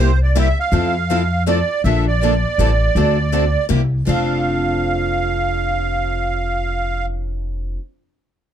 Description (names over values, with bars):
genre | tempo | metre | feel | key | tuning
acoustic string swing (jazz manouche) | 162 BPM | 3/4 | swing 61% on 8ths | F major | A4 = 440 Hz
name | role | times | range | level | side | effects
musette accordion | melody | 0.0-7.1 s | C5 to F5 | -20 LUFS | right 4 dB | none
picked steel-string acoustic guitar | accompaniment | 0.0-7.8 s | C3 to A4 | -24 LUFS | left 7 dB | none
picked steel-string acoustic guitar | accompaniment | 0.0-7.8 s | C3 to A4 | -27 LUFS | right 6 dB | none
upright bass | bass | 0.0-7.8 s | F1 to F2 | -19 LUFS | equal | none
room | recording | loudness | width
little or no reverb | dark, warm production | -16 LUFS | side -9 dB against mid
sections
0.0-1.8 A section; 1.8-4.1 B section; 4.1-6.3 C section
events
none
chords
0.0 C7; 0.7 Fmaj7; 1.8 Bbmaj7; 2.6 Am7; 2.9 D7; 3.7 C7; 4.1 F6